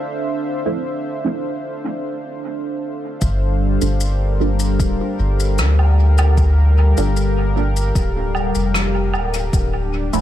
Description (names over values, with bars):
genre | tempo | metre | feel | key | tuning
ambient dub | 76 BPM | 4/4 | straight | G dorian | A4 = 440 Hz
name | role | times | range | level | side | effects
warm analog pad | sustained chords | 0.0-10.2 s | G3 to F5 | -23 LUFS | left 1 dB | chorus
filtered dub chord stab | stabs | 0.7-10.2 s | F3 to A4 | -26 LUFS | right 5 dB | phaser, wide subtle chorus, dub echo
soft dub sub bass | bass | 3.2-10.2 s | D1 to D2 | -16 LUFS | equal | tube saturation
electronic kick drum | drums | 3.2-9.7 s | none | -20 LUFS | equal | none
shaker, rim click and woodblock | drums | 3.2-10.2 s | none | -26 LUFS | right 1 dB | dub echo
room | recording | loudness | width
studio reverb | none | -16 LUFS | side -12 dB against mid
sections
0.0-3.2 A section; 3.2-10.2 B section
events
none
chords
0.0 Dm7; 3.2 Gm7; 9.5 Dm7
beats
| 0.06 0.85 1.64 2.43 | 3.22 4.01 4.80 5.59 | 6.38 7.17 7.96 8.74 | 9.53